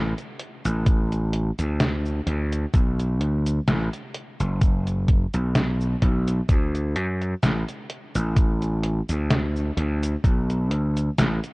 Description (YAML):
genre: vaporwave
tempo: 64 BPM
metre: 4/4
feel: swing 55% on 16ths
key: unclear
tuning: A4 = 440 Hz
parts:
  - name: gritty slap bass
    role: bass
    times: 0.0-11.4 s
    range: F#1 to F#2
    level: -23 LUFS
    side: equal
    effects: overdrive, tube saturation
  - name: detuned 8-bit digital drum machine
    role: drums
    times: 0.2-11.5 s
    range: cabasa, hi-hat, snare drum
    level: -27 LUFS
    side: equal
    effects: none
  - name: electronic kick drum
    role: drums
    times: 0.9-10.4 s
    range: none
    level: -19 LUFS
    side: equal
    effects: none
room: little or no reverb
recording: dark, warm production, cassette tape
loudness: -21 LUFS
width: side -26 dB against mid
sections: 0.0-11.5 A section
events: none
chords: none